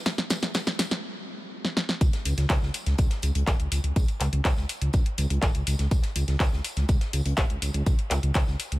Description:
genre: melodic techno.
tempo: 123 BPM.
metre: 4/4.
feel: straight.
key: C# minor.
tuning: A4 = 440 Hz.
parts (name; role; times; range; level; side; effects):
swelling detuned saw bass; bass; 0.1-8.8 s; G#1 to E2; -26 LUFS; equal; sidechain pumping, high-pass filter.
electronic kick drum; drums; 0.1-8.4 s; none; -24 LUFS; equal; high-pass filter on kick.
house drum kit; drums; 0.1-8.8 s; handclaps, hi-hat, snare drum; -29 LUFS; equal; sidechain pumping on hats.
loose indie drum kit; drums; 0.1-8.7 s; hi-hat, snare drum, tambourine; -41 LUFS; left 1 dB; sidechain pumping on hats, high-pass filter on hats, high-pass filter on snare, sidechain pumping on perc, high-pass filter on perc, high-pass filter on room.
room: small room ambience.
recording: none.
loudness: -23 LUFS.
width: side -18 dB against mid.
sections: 0.0-2.0 A section; 2.0-8.8 B section.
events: build-up 0.0-2.0; drum fill 0.0-1.0, 1.6-2.0; stop 1.0-2.0; drop 2.0-8.8.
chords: none.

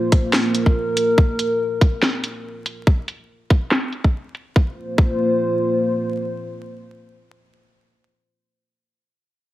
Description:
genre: deep dubstep.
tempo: 142 BPM.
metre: 4/4.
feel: swing 56% on 16ths, half-time.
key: unclear.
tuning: A4 = 437 Hz.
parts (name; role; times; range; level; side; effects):
dark analog pad; sustained chords; 0.0-7.5 s; Bb3 to C5; -21 LUFS; equal; chorus.
electronic kick drum; drums; 0.1-5.1 s; none; -14 LUFS; equal; overdrive, studio reverb.
garage drum kit; drums; 0.1-4.4 s; hi-hat, snare drum; -20 LUFS; equal; overdrive, low-pass filter on hats, studio reverb, low-pass filter on perc, low-pass filter on snare, low-pass filter on toms.
room: moderate spring reverb, RT60 1.2 s, digital ambience.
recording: heavily compressed radio sound, vinyl crackle.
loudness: -17 LUFS.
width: side -15 dB against mid.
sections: 0.0-4.6 A section; 4.6-7.9 B section.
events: filter sweep on drum 0.0-4.6.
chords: 0.0 Bb5.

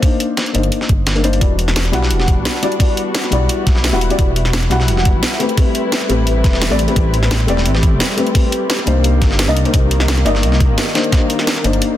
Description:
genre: liquid drum and bass.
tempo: 173 BPM.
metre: 4/4.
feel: straight.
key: E minor.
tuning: A4 = 440 Hz.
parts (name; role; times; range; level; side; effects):
felt-muted upright piano; accompaniment; 0.0-12.0 s; G3 to F#5; -19 LUFS; left 2 dB; low-pass filter, ping-pong delay.
drum and bass drum kit; drums; 0.0-11.9 s; hi-hat, snare drum; -21 LUFS; equal; none.
dusty soul sampler-style drum kit; drums; 0.0-11.9 s; hi-hat, snare drum; -24 LUFS; equal; high-pass filter on hats, high-pass filter on snare.
electronic kick drum; drums; 0.0-11.2 s; none; -14 LUFS; equal; none.
dark detuned saw bass; bass; 0.6-11.8 s; E1 to C2; -16 LUFS; equal; none.
dark studio string section; sustained chords; 1.4-12.0 s; Eb3 to B4; -23 LUFS; left 1 dB; none.
room: light reverb, digital ambience.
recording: dense, heavily limited modern master.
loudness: -12 LUFS.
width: side -12 dB against mid.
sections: 0.0-12.0 A section.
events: none.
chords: 0.0 Cm9; 1.4 Em9; 5.4 Am9; 8.9 Cm9.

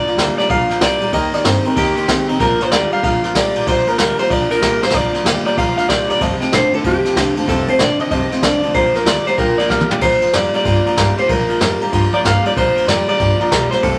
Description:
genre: rockabilly.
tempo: 189 BPM.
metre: 4/4.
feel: swing 64% on 8ths.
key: Bb major.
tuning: A4 = 441 Hz.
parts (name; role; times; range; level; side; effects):
electric guitar through a small old amp; melody; 0.0-14.0 s; G4 to F5; -20 LUFS; equal; none.
picked steel-string acoustic guitar; accompaniment; 0.0-14.0 s; F2 to G4; -32 LUFS; equal; none.
electric guitar through a small old amp; riff; 0.0-14.0 s; F2 to C4; -23 LUFS; equal; none.
dark upright piano; accompaniment; 0.1-14.0 s; C5 to C6; -26 LUFS; equal; none.
upright bass; bass; 0.1-14.0 s; E1 to G2; -26 LUFS; equal; none.
jazz brush drum kit; drums; 0.1-13.9 s; crash cymbal, kick drum, ride cymbal, snare drum, toms; -22 LUFS; equal; none.
room: wet studio ambience, RT60 0.5 s.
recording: none.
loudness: -16 LUFS.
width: mono.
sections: 0.0-10.0 A section; 10.0-14.0 B section.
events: drum fill 4.8, 9.7-10.0.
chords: 0.0 Bb; 1.1 Eb; 2.4 Bb; 6.2 F7; 8.7 Bb.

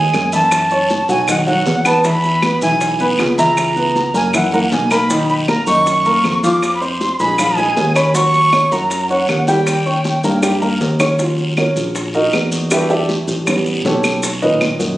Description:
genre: Afro-Cuban jazz.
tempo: 158 BPM.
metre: 4/4.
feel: straight.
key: unclear.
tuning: A4 = 439 Hz.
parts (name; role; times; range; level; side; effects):
breathy reedy jazz flute; melody; 0.0-10.6 s; F#5 to D6; -16 LUFS; right 1 dB; none.
dark baby grand piano; accompaniment; 0.0-15.0 s; A#2 to C#6; -18 LUFS; right 1 dB; none.
fingered electric bass; bass; 0.0-15.0 s; A1 to G2; -20 LUFS; equal; none.
bongos; percussion; 0.1-15.0 s; none; -27 LUFS; left 3 dB; none.
claves; percussion; 0.1-14.8 s; none; -22 LUFS; equal; none.
guiro; percussion; 0.1-15.0 s; none; -27 LUFS; left 1 dB; none.
maracas; percussion; 0.1-15.0 s; none; -28 LUFS; right 1 dB; none.
congas; percussion; 0.2-15.0 s; none; -26 LUFS; equal; none.
room: light reverb.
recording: recorded on a phone in the room, studio reverb.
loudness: -13 LUFS.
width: side -15 dB against mid.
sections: 0.0-11.2 A section; 11.2-15.0 B section.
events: drum fill 10.0-11.2; grand piano solo 11.2-15.0.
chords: 0.0 G#7(no3); 0.5 F#m7; 1.3 B; 2.0 E6; 3.6 C#m7; 4.3 F#7; 5.1 Bmaj7; 6.6 Fm; 7.4 A#5; 8.1 D#m7; 9.7 D#7; 11.2 Ebm7; 12.7 Em7; 13.5 A9; 14.2 Bmaj7.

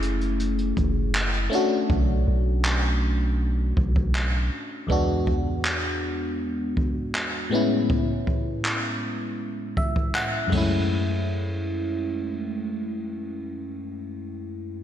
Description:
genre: contemporary R&B.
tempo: 80 BPM.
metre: 4/4.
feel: straight.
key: F# minor.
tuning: A4 = 440 Hz.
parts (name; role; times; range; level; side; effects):
FM electric piano; accompaniment; 0.0-14.8 s; E2 to F#5; -26 LUFS; left 1 dB; chorus, phaser.
long sustained 808-style bass; bass; 0.0-4.5 s; F#1 to B1; -23 LUFS; equal; none.
jazz brush drum kit; drums; 0.0-10.7 s; handclaps, hi-hat, kick drum, ride cymbal; -27 LUFS; equal; vintage 12-bit sampler grit.
room: moderate lush hall reverb, RT60 2.5 s.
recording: dreamy mix soaked in reverb.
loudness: -22 LUFS.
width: side -10 dB against mid.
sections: 0.0-10.9 A section; 10.9-13.9 B section.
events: FM electric piano fill 9.4-10.9.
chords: 0.0 F#m9; 1.5 Bm9; 4.9 E9; 7.5 Amaj7; 10.5 F#m9.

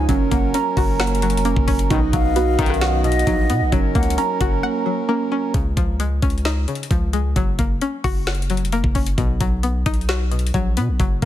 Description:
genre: hip hop, trap.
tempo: 132 BPM.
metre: 4/4.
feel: half-time.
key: F# major.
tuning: A4 = 440 Hz.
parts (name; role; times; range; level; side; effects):
breathy concert flute; second line; 0.0-4.2 s; D#5 to F#5; -28 LUFS; left 6 dB; tape echo.
string-like resonator pluck; accompaniment; 0.0-11.3 s; B2 to F#5; -25 LUFS; left 5 dB; chorus.
hand-pumped harmonium; sustained chords; 0.0-5.5 s; F#3 to D#5; -27 LUFS; equal; none.
muted felt-like synth keys; arpeggios; 0.0-5.5 s; A#3 to A#5; -22 LUFS; right 8 dB; chorus, tape echo.
long sustained 808-style bass; bass; 0.0-11.3 s; E#1 to B2; -21 LUFS; equal; none.
trap drum kit; drums; 0.1-11.3 s; hi-hat, kick drum, rim click, snare drum; -22 LUFS; equal; none.
warm brass ensemble; stabs; 1.9-3.0 s; B1 to D#3; -28 LUFS; left 6 dB; none.
room: small room ambience.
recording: dense, heavily limited modern master.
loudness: -17 LUFS.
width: side -12 dB against mid.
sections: 0.0-5.5 A section; 5.5-11.3 B section.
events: break 4.6-5.5.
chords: 0.1 F#; 1.9 B; 3.7 F#; 5.5 C#add9; 7.4 F#; 9.2 B.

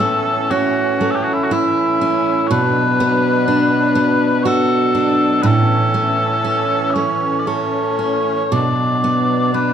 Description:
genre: celtic folk, Celtic slow air.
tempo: 57-63 BPM.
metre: 3/4.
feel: rubato.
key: unclear.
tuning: A4 = 442 Hz.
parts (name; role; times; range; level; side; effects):
mellow small bagpipes; melody; 0.0-9.7 s; E4 to E5; -18 LUFS; left 1 dB; none.
picked steel-string acoustic guitar; accompaniment; 0.0-9.7 s; A2 to A4; -17 LUFS; right 2 dB; none.
musette accordion; sustained chords; 0.0-9.7 s; A2 to D4; -24 LUFS; left 2 dB; none.
room: moderate recital hall reverb, RT60 1.5 s.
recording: none.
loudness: -14 LUFS.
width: side -8 dB against mid.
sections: 0.0-9.7 A section.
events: none.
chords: 0.0 A; 2.5 Bm; 5.4 A; 8.5 Bm.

